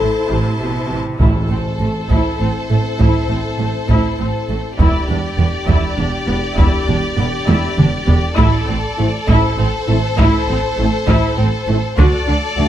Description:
cinematic, epic orchestral film score; 67 BPM (dotted quarters); 6/8; straight; A minor; A4 = 437 Hz
rich symphonic violin section; melody; 0.0-12.7 s; C5 to D5; -25 LUFS; left 4 dB
rich studio violin section; second line; 0.0-12.7 s; G4 to A5; -25 LUFS; left 1 dB
warm symphonic viola section; accompaniment; 0.0-12.7 s; C3 to F#4; -22 LUFS; equal
mellow French horn section; sustained chords; 0.0-12.7 s; A3 to A4; -25 LUFS; left 5 dB
rich symphonic cello section; bass; 0.0-12.7 s; E2 to D3; -19 LUFS; right 2 dB
rich symphonic double bass section; bass; 0.0-12.7 s; E1 to D2; -20 LUFS; right 3 dB
solo taiko drums; drums; 1.2-12.5 s; -17 LUFS; equal
timpani; percussion; 1.2-2.1 s; A2; -22 LUFS; right 1 dB
light reverb; close, detailed microphones; -14 LUFS; side -11 dB against mid
0.0-1.2 A section; 1.2-12.7 B section
drum fill 7.5-8.4
0.0 Am; 4.8 Em7; 8.4 Am; 12.0 D

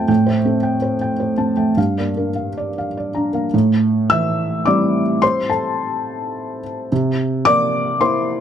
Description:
neoclassical minimalist piano; 107 BPM; 3/4; rubato; A4 = 440 Hz
felt-muted upright piano; solo; 0.0-8.4 s; F2 to E6; -16 LUFS; equal
light reverb; close, detailed microphones; -16 LUFS; side -9 dB against mid
0.0-3.5 A section; 3.5-8.4 B section
0.1 Am7; 1.8 Gm7; 3.5 Am7; 6.9 C7

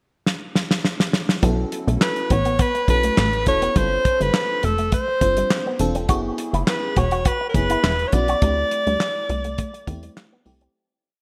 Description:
early-eighties boogie funk; 103 BPM; 4/4; straight; A4 = 436 Hz
damped 70s drum kit; drums; 0.3-10.7 s; handclaps, hi-hat, kick drum, snare drum; -24 LUFS; equal; gated reverb
FM electric piano with soft pad layer; accompaniment; 1.4-10.7 s; A3 to C5; -31 LUFS; equal; chorus
electric guitar with an envelope filter; riff; 1.4-10.7 s; G3 to F#4; -31 LUFS; equal; lush chorus
plucky analog bass; bass; 1.4-10.7 s; E1 to E2; -26 LUFS; equal
clear alto saxophone; melody; 2.0-10.2 s; A4 to D5; -24 LUFS; equal
moderate plate reverb, RT60 2.2 s; bright 1980s-style digital production; -21 LUFS; mono
0.0-1.4 pickup bar; 1.4-10.8 verse
drum fill 0.3-1.4; fade-out 8.4-10.8
0.0 N.C.; 1.4 B9sus4; 3.8 G9sus4; 6.1 F#9sus4; 8.4 D9sus4

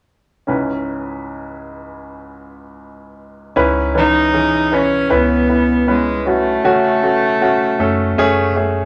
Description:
pop ballad; 78 BPM; 4/4; straight; C# minor; A4 = 440 Hz
clear baby grand piano; accompaniment; 0.5-8.9 s; C#2 to B4; -19 LUFS; equal
vintage muted fingered electric bass; bass; 3.6-8.9 s; F#1 to C#2; -26 LUFS; equal
warm cello; melody; 4.0-8.6 s; G#3 to D#4; -19 LUFS; equal
wet studio reverb, RT60 0.5 s; -16 LUFS; mono
0.5-3.6 A section; 3.6-8.9 B section
0.5 C#m7; 6.6 F#m

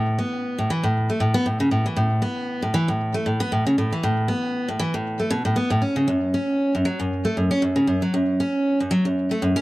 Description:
folktronica; 117 BPM; 4/4; swing 56% on 16ths; A major; A4 = 440 Hz
picked steel-string acoustic guitar; solo; 0.0-9.6 s; F#2 to C#4; -20 LUFS; equal; tape echo
light reverb; dry, close 1970s-style studio recording; -20 LUFS; side -18 dB against mid
0.0-9.6 A section

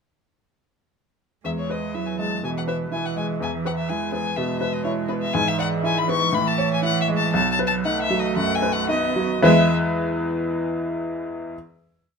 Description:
quick classical-period movement for piano trio; 108-126 BPM; 4/4; rubato; E major; A4 = 443 Hz
rich cello; second line; 1.4-9.7 s; E3 to B3; -26 LUFS; right 10 dB
bright baby grand piano; accompaniment; 1.4-11.6 s; B1 to E5; -23 LUFS; left 1 dB
rich violin; melody; 1.5-9.7 s; B4 to C#6; -25 LUFS; left 6 dB
light reverb; minimal, uncompressed stereo recording; -20 LUFS; side -5 dB against mid
1.5-9.4 A section; 9.4-11.5 final chord
1.5 E; 5.4 E7/G#; 6.3 Amaj7; 7.3 B7; 9.4 E

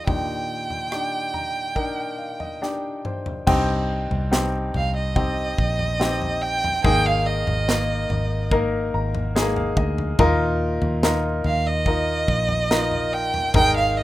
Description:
pop ballad; 72 BPM; 4/4; straight; A4 = 440 Hz
warm violin; melody; 0.0-14.0 s; Eb5 to G5; -24 LUFS; right 3 dB
clear baby grand piano; accompaniment; 0.0-14.0 s; Eb2 to Bb5; -25 LUFS; left 2 dB
modern studio drum kit; drums; 0.1-13.7 s; crash cymbal, kick drum, rim click, snare drum, toms; -25 LUFS; equal
vintage muted fingered electric bass; bass; 3.5-14.0 s; Ab1 to Eb2; -25 LUFS; equal
light reverb; rough home demo mix; -20 LUFS; side -15 dB against mid
0.0-3.5 A section; 3.5-14.0 B section
grand piano fill 0.9-3.5, 8.5-10.2; drum fill 2.6-3.5
0.1 Ebmaj7; 3.5 Cm; 6.8 Absus2; 10.2 Ebsus2

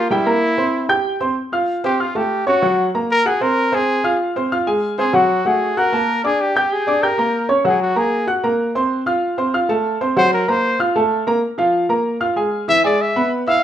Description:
jazz; 191 BPM; 4/4; straight; A4 = 440 Hz
warm trumpet; melody; 0.0-13.6 s; E4 to F5; -18 LUFS; left 1 dB; plate reverb
warm grand piano; accompaniment; 0.0-13.6 s; E3 to G6; -17 LUFS; right 1 dB; plate reverb
wet studio reverb, RT60 0.6 s; rough home demo mix; -15 LUFS; side -10 dB against mid
0.0-1.4 A section; 1.4-11.4 B section; 11.4-13.6 B section
trumpet solo 1.4-13.6
0.1 C7; 1.4 F; 2.6 Gb; 3.3 Ab9/C; 3.9 Ab6; 5.1 D; 6.4 Gm; 7.7 Gbadd9; 8.9 F; 10.2 Gb; 10.8 F; 11.4 Bb5; 12.7 E

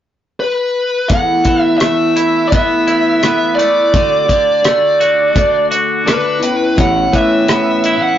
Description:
folk rock and heartland rock; 85 BPM; 4/4; straight; A4 = 440 Hz
bluesy overdriven lead guitar; melody; 0.4-8.2 s; B4 to F#5; -14 LUFS; right 1 dB; distortion
picked twelve-string acoustic guitar; accompaniment; 1.1-8.2 s; A2 to F#4; -17 LUFS; left 1 dB
twangy electric guitar; riff; 1.1-8.2 s; E2 to F#4; -18 LUFS; equal
damped 70s drum kit; drums; 1.1-8.0 s; hi-hat, kick drum, rim click; -16 LUFS; equal
picked electric bass; bass; 6.8-8.0 s; A1 to A2; -18 LUFS; right 1 dB
moderate studio reverb, RT60 0.5 s; rough rehearsal-room recording, warm saturation, nothing above 7.5 kHz; -11 LUFS; side -10 dB against mid
0.0-1.1 A section; 1.1-8.2 B section
0.0 N.C.; 1.1 Esus4; 3.9 D; 6.4 Aadd9

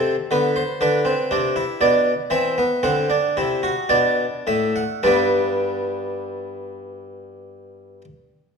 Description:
classical, baroque-style 3-part fugue for harpsichord; 51-64 BPM; 4/4; straight; G major; A4 = 439 Hz
harpsichord; solo; 0.0-8.0 s; G2 to F#5; -18 LUFS; equal
wet recital hall reverb, RT60 1.5 s; -18 LUFS; side -5 dB against mid
0.0-5.0 A section; 5.0-8.6 B section
slowing down 0.0-5.0
0.0 Am; 0.8 Bmadd11; 2.8 D7; 5.0 G

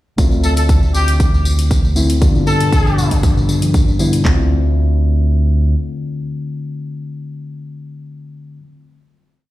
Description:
nu-disco, nu disco; 118 BPM; 4/4; straight; D dorian; A4 = 440 Hz
mellow reed electric piano; accompaniment; 0.2-8.6 s; D3 to F4; -21 LUFS; left 2 dB; sidechain pumping
fingered electric bass with an envelope filter; bass; 0.2-5.7 s; D2 to G2; -15 LUFS; equal
electronic hi-hat; drums; 0.2-4.2 s; -28 LUFS; left 3 dB; studio reverb
pop drum kit; drums; 0.2-4.4 s; handclaps, kick drum, toms; -14 LUFS; equal; studio reverb
tambourine; percussion; 0.2-4.2 s; -28 LUFS; left 2 dB
clear trumpet section; melody; 0.4-3.2 s; G4 to A4; -22 LUFS; left 1 dB; digital delay
wide unison pluck; arpeggios; 2.2-4.5 s; B2 to F3; -26 LUFS; right 1 dB
little or no reverb; played on a big sound system in a bare room, stone room reverb; -12 LUFS; side -16 dB against mid
0.2-4.3 breakdown; 4.3-8.3 final chord
0.2 Dm7; 2.2 G7; 4.3 Dm7

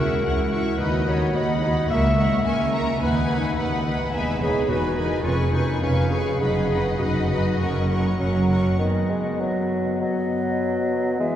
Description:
classical, dramatic, fast romantic movement for symphony orchestra; 97-110 BPM; 4/4; rubato; B major; A4 = 440 Hz
warm symphonic violin section; melody; 0.0-8.5 s; G#4 to A#5; -34 LUFS; left 4 dB
rich symphonic violin section; second line; 0.0-8.8 s; E5 to C#6; -32 LUFS; left 3 dB
warm clarinet; second line; 0.0-11.4 s; C#4 to E5; -28 LUFS; left 1 dB
warm symphonic viola section; accompaniment; 0.0-8.8 s; A#3 to B4; -28 LUFS; equal
warm symphonic cello section; bass; 0.0-8.7 s; C#2 to F#2; -26 LUFS; right 1 dB
warm symphonic double bass section; bass; 0.0-8.7 s; E1 to D#2; -26 LUFS; right 1 dB
clear bassoon; accompaniment; 8.2-11.4 s; D#3 to G#3; -26 LUFS; right 1 dB
silver concert flute; second line; 8.8-11.4 s; D#5 to E5; -31 LUFS; left 3 dB
mellow French horn section; sustained chords; 8.8-11.4 s; E3 to B3; -28 LUFS; left 5 dB
wet cathedral reverb, RT60 6.0 s; heard from further back in the room, nothing above 10.4 kHz; -20 LUFS; side -10 dB against mid
0.0-8.8 A section; 8.8-11.4 B section
0.0 F#7/C#; 0.8 B/D#; 1.9 A#dim/C#; 3.0 B/D#; 4.1 Emaj7; 5.3 C#7/E#; 6.4 B/F#; 7.6 F#; 8.8 B/D#

